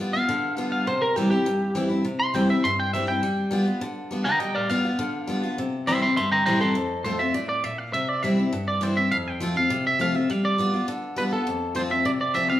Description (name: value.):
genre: rock.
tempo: 204 BPM.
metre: 4/4.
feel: straight.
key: C major.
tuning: A4 = 440 Hz.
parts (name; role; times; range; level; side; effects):
picked steel-string acoustic guitar; accompaniment; 0.0-12.6 s; F2 to F4; -24 LUFS; left 1 dB; none.
twangy electric guitar; melody; 0.1-12.6 s; G4 to C6; -24 LUFS; right 1 dB; spring reverb.
room: wet large studio reverb, RT60 1.1 s.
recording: band playing live in one room.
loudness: -22 LUFS.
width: side -13 dB against mid.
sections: 0.0-6.8 A section; 6.8-12.6 B section.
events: clean electric guitar solo 0.0-6.8.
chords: 0.0 G7; 0.9 C; 3.2 G7; 5.6 C; 6.8 F; 7.9 C; 9.1 F; 10.3 G7; 11.5 F.